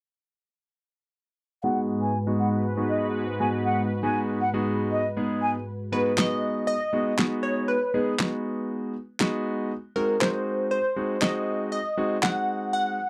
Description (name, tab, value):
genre	dance-pop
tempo	119 BPM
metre	4/4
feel	straight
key	G# minor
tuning	A4 = 438 Hz
part	silver concert flute	melody	1.6-5.5 s	D#5 to G#5	-30 LUFS	equal	low-pass filter, slapback echo
part	clear concert grand piano	accompaniment	1.6-13.0 s	G#3 to G#4	-30 LUFS	equal	low-pass filter
part	sweeping resonant pad	sustained chords	1.6-5.6 s	G#2 to B4	-32 LUFS	equal	chorus, low-pass filter
part	glassy wavetable pluck	melody	5.9-13.1 s	A#4 to F#5	-29 LUFS	equal	chorus, slapback echo
part	electronic handclaps and snare drum	drums	6.2-12.3 s	none	-26 LUFS	equal	none
room	light reverb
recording	dark, warm production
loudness	-26 LUFS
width	mono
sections	1.6-5.7 A section; 5.7-13.1 B section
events	filter sweep 1.6-5.7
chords	1.6 G#m7; 9.7 G#7